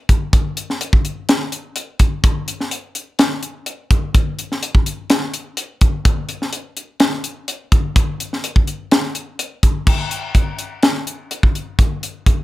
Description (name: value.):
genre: jazz.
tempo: 126 BPM.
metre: 4/4.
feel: straight.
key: none.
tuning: none.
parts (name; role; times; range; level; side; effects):
crisp fusion drum kit; drums; 0.1-12.4 s; crash cymbal, hi-hat, kick drum, snare drum; -15 LUFS; equal; none.
room: light reverb.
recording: none.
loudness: -16 LUFS.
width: side -17 dB against mid.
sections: 0.0-9.9 A section; 9.9-12.4 B section.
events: none.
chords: none.